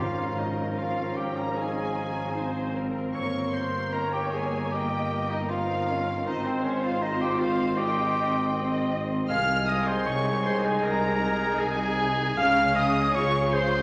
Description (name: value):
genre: classical, slow romantic movement for symphony orchestra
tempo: 78 BPM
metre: 4/4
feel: rubato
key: Ab major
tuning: A4 = 440 Hz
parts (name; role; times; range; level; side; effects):
- rich studio violin section; melody; 0.0-13.8 s; C5 to F6; -42 LUFS; equal; none
- concert flute; second line; 0.0-13.8 s; C5 to F6; -35 LUFS; equal; none
- warm clarinet; second line; 0.0-13.8 s; C4 to F5; -32 LUFS; equal; none
- warm oboe; second line; 0.0-13.6 s; Ab5 to C6; -39 LUFS; equal; none
- warm studio violin section; second line; 0.0-13.8 s; C5 to F6; -42 LUFS; equal; none
- warm bassoon; accompaniment; 0.0-13.8 s; Db3 to F3; -39 LUFS; equal; none
- warm studio viola section; accompaniment; 0.0-13.8 s; Bb3 to Eb5; -35 LUFS; equal; none
- mellow French horn section; sustained chords; 0.0-13.8 s; Ab3 to F4; -37 LUFS; equal; none
- mellow tuba; bass; 0.0-13.7 s; G1 to Db2; -36 LUFS; equal; none
- rich studio double bass section; bass; 0.0-13.8 s; G1 to Db2; -42 LUFS; equal; none
- warm studio cello section; bass; 0.0-13.8 s; G2 to Db3; -39 LUFS; equal; none
- timpani; percussion; 0.0-1.1 s; Ab2; -41 LUFS; equal; none
room: wet recital hall reverb, RT60 1.6 s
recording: none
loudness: -26 LUFS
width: mono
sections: 0.0-13.8 A section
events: none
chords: 0.0 Bbm7/Ab; 3.1 Eb7/G; 6.3 Ab; 9.3 Ab/C; 12.4 Db